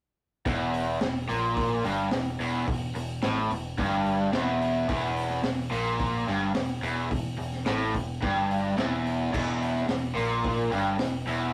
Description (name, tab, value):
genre	garage rock duo or trio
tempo	108 BPM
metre	4/4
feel	straight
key	unclear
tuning	A4 = 437 Hz
part	raw garage guitar	riff	0.5-11.5 s	E2 to Bb2	-30 LUFS	equal	overdrive
part	growling picked electric bass	bass	0.5-11.5 s	E1 to Bb1	-36 LUFS	equal	overdrive
part	crunchy breakbeat drum kit	drums	0.5-11.4 s	crash cymbal, hi-hat, kick drum, snare drum	-35 LUFS	equal	none
room	moderate small room ambience, RT60 0.5 s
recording	rough rehearsal-room recording, warm saturation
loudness	-28 LUFS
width	mono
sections	0.5-11.5 A section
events	none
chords	0.5 Edim